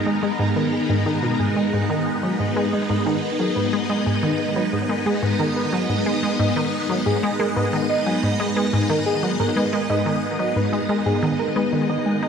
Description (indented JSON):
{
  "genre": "ambient, sequencer-driven space music",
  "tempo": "90 BPM",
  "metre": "4/4",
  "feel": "straight",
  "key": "G# minor",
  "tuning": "A4 = 436 Hz",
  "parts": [
    { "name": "phased string machine", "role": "sustained chords", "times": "0.0-12.3 s", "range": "G#3 to D#5", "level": "-22 LUFS", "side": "equal", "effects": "ensemble chorus, phaser" },
    { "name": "soft round pluck", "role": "arpeggios", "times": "0.1-12.2 s", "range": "G#4 to G#5", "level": "-27 LUFS", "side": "right 1 dB", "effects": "chorus, auto-pan, tape echo" },
    { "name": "resonant blip pluck", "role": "riff", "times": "0.1-12.3 s", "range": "G#2 to D#4", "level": "-23 LUFS", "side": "equal", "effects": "chorus, tape echo" }
  ],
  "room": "wet huge ambient reverb, RT60 8.0 s",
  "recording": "none",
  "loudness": "-19 LUFS",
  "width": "side -7 dB against mid",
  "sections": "0.0-12.3 A section",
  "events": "fade-in on synth arpeggio sound 0.0-12.3",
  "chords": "0.0 G#madd9"
}